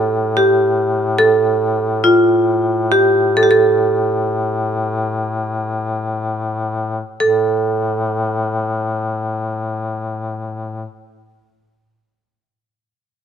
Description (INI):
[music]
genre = caucasian folk, Caucasian lament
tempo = 47-73 BPM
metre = 3/4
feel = rubato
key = unclear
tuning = A4 = 440 Hz
[part]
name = marimba with hard mallets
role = melody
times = 0.0-10.9 s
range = F4 to A4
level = -14 LUFS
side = right 2 dB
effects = none
[part]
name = clear duduk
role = drone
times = 0.0-10.9 s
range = A2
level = -20 LUFS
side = left 3 dB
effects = none
[sound]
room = light reverb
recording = close, detailed microphones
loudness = -15 LUFS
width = side -8 dB against mid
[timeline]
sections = 0.0-7.2 A section; 7.2-10.9 B section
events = slowing down 1.2-7.2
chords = none